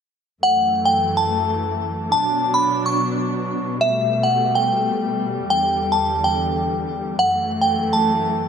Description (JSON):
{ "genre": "hip hop", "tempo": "142 BPM", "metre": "4/4", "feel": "half-time", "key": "F# phrygian", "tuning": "A4 = 440 Hz", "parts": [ { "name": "glassy synth bell", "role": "melody", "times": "0.4-8.5 s", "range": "E5 to C#6", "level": "-19 LUFS", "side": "equal", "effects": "chorus, ping-pong delay" }, { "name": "muted studio string section", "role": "sustained chords", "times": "0.4-8.5 s", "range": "E2 to D4", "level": "-23 LUFS", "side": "equal", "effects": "stereo widening" } ], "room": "moderate lush hall reverb, RT60 2.7 s", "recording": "dark, warm production", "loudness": "-17 LUFS", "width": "side -7 dB against mid", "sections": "0.4-8.5 A section", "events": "none", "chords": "0.4 F#m7; 2.1 Bm; 3.8 Gadd9; 5.5 Em7; 7.2 F#m7", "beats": "| 0.43 0.85 1.27 1.70 | 2.12 2.54 2.97 3.39 | 3.81 4.23 4.66 5.08 | 5.50 5.92 6.35 6.77 | 7.19 7.61 8.04 8.46" }